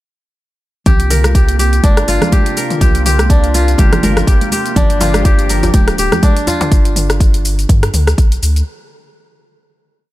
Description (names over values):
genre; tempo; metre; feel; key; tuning
afro house; 123 BPM; 4/4; swing 56% on 16ths; G minor; A4 = 440 Hz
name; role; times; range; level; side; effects
warm analog pad; sustained chords; 0.9-6.7 s; C3 to G4; -23 LUFS; right 1 dB; chorus, sidechain pumping
kora; arpeggios; 0.9-8.0 s; D4 to Bb4; -18 LUFS; left 1 dB; vintage 12-bit sampler grit, sidechain pumping, ping-pong delay
round analog bass; bass; 0.9-8.6 s; D1 to G2; -15 LUFS; equal; tube saturation, sidechain pumping
electronic kick drum; drums; 0.9-8.3 s; none; -11 LUFS; equal; studio reverb
house drum kit; drums; 0.9-8.7 s; hi-hat, rim click, shaker, toms; -19 LUFS; left 1 dB; studio reverb
congas; percussion; 0.9-6.3 s; none; -21 LUFS; right 2 dB; none
djembe; percussion; 4.8-6.7 s; none; -22 LUFS; left 1 dB; none
room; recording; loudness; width
little or no reverb; none; -10 LUFS; side -16 dB against mid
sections
0.9-8.7 drop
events
drop 0.9-8.7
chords
0.9 C7sus4; 4.8 Gm7